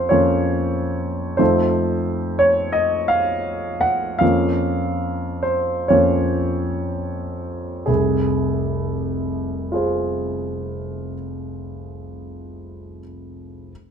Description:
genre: classical, romantic character piece for solo piano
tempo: 55-93 BPM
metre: 4/4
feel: rubato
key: F minor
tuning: A4 = 441 Hz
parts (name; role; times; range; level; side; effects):
- warm concert grand piano; solo; 0.0-13.7 s; F1 to Gb5; -19 LUFS; equal; none
room: moderate large studio reverb, RT60 0.9 s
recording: none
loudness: -18 LUFS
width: side -7 dB against mid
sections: 0.0-7.9 A section; 7.9-11.5 B section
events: slowing down 0.1-7.9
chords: 0.0 Bbm/F; 1.4 F7; 4.2 Bbm/F; 7.9 Fm

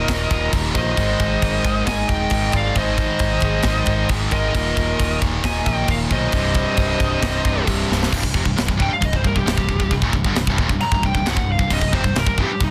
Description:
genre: heavy metal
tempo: 134 BPM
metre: 4/4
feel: straight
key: C minor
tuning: A4 = 440 Hz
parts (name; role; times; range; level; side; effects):
- high-gain lead guitar; melody; 0.0-12.7 s; Eb4 to Bb5; -26 LUFS; equal; distortion
- high-gain lead guitar; second line; 0.0-7.6 s; Bb4 to Eb5; -30 LUFS; equal; distortion
- heavy high-gain guitar; riff; 0.0-12.7 s; C2 to Ab3; -30 LUFS; equal; distortion
- high-gain distorted guitar; riff; 0.0-12.7 s; C2 to Ab3; -29 LUFS; equal; distortion
- thick fuzz guitar; riff; 0.0-12.7 s; C2 to Ab3; -30 LUFS; equal; distortion
- picked electric bass; bass; 0.0-12.7 s; C1 to B1; -27 LUFS; equal; none
- tight metal drum kit; drums; 0.1-12.7 s; china cymbal, crash cymbal, kick drum, snare drum; -24 LUFS; equal; none
room: little or no reverb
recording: dense, heavily limited modern master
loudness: -19 LUFS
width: mono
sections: 0.0-8.1 A section; 8.1-12.7 B section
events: half time 0.0-8.1; drum fill 7.9; lead electric guitar solo 8.1-12.7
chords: 0.0 Eb5; 1.0 Ab; 4.5 Eb5; 6.3 Cm

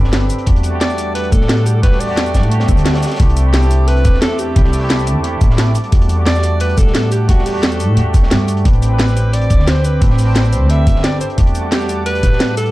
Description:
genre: liquid drum and bass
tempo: 176 BPM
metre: 4/4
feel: straight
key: E minor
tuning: A4 = 442 Hz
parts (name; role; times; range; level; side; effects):
- barky tine electric piano; accompaniment; 0.0-12.7 s; A3 to F#5; -24 LUFS; right 1 dB; wide subtle chorus, dub echo
- warm analog pad; sustained chords; 0.0-12.7 s; G3 to D6; -25 LUFS; right 2 dB; chorus
- upright bass; bass; 0.0-12.7 s; G1 to A2; -15 LUFS; equal; none
- crunchy breakbeat drum kit; drums; 0.0-12.7 s; hi-hat, snare drum; -29 LUFS; equal; high-pass filter on hats, high-pass filter on snare, high-pass filter on room
- drum and bass drum kit; drums; 0.1-12.6 s; hi-hat, shaker, snare drum; -19 LUFS; equal; none
- electronic kick drum; drums; 0.5-12.3 s; none; -12 LUFS; equal; none
- clear alto saxophone; melody; 0.8-12.7 s; F#4 to E5; -22 LUFS; equal; digital delay
- swell; sound effects; 2.6-3.2 s; none; -28 LUFS; left 4 dB; none
room: small room ambience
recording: dark, warm production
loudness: -11 LUFS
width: side -18 dB against mid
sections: 0.0-12.7 A section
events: swell 2.6-3.2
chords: 0.5 Em11; 3.2 C69; 5.8 Em11; 8.7 Am11; 11.4 Em11

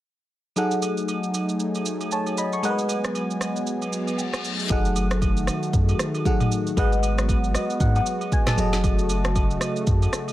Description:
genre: amapiano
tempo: 116 BPM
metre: 4/4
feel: swing 58% on 16ths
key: F# dorian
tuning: A4 = 437 Hz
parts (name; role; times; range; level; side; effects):
- FM electric piano; accompaniment; 0.6-10.3 s; F#3 to C#6; -26 LUFS; left 1 dB; chorus, phaser
- warm analog pad; sustained chords; 0.6-10.3 s; C#3 to G#5; -29 LUFS; right 1 dB; chorus
- afro-pop drum kit; drums; 0.6-10.3 s; kick drum, rim click, shaker, snare drum, toms; -25 LUFS; equal; none
- agogo bells and woodblock; percussion; 0.6-10.3 s; none; -37 LUFS; right 5 dB; none
- reverse cymbal; sound effects; 4.0-4.7 s; none; -32 LUFS; left 7 dB; none
- punchy sub bass; bass; 4.7-10.1 s; F#1 to G#2; -24 LUFS; equal; none
room: little or no reverb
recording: none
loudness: -21 LUFS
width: side -14 dB against mid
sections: 0.6-4.7 A section; 4.7-10.3 B section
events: reverse cymbal 4.0-4.7; FM electric piano fill 7.3-8.8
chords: 0.6 F#m69; 2.6 G#m7; 4.4 F#m69; 6.8 G#m7; 8.6 F#m69

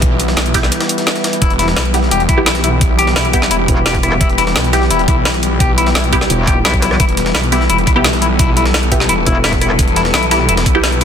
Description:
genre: dark technical drum and bass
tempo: 172 BPM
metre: 4/4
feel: straight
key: E minor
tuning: A4 = 440 Hz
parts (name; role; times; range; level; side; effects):
- metallic inharmonic drone; sustained chords; 0.0-11.0 s; E3 to A4; -19 LUFS; left 2 dB; chorus, built-in reverb, sidechain pumping
- snarling distorted saw bass; bass; 0.0-11.0 s; E1 to B1; -17 LUFS; equal; distortion, overdrive, sidechain pumping
- breakbeat sampler-style drum kit; drums; 0.0-11.0 s; hi-hat, snare drum; -24 LUFS; left 1 dB; none
- drum and bass drum kit; drums; 0.0-11.0 s; hi-hat, rim click, snare drum; -18 LUFS; equal; overdrive
- electronic kick drum; drums; 0.0-10.7 s; none; -15 LUFS; equal; overdrive
- filtered dub chord stab; stabs; 0.5-10.9 s; B3 to G4; -21 LUFS; right 2 dB; phaser, ping-pong delay
- semi-hollow electric guitar; arpeggios; 1.4-11.0 s; E4 to G4; -18 LUFS; left 3 dB; phaser, sidechain pumping, ping-pong delay
- metallic wobble bass; bass; 3.7-4.2, 6.3-7.0, 9.3-9.8 s; E1 to B1; -17 LUFS; equal; chorus
room: light reverb, digital ambience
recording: dense, heavily limited modern master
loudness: -11 LUFS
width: side -8 dB against mid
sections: 0.0-11.0 A section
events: break 0.7-1.4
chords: 0.0 Em

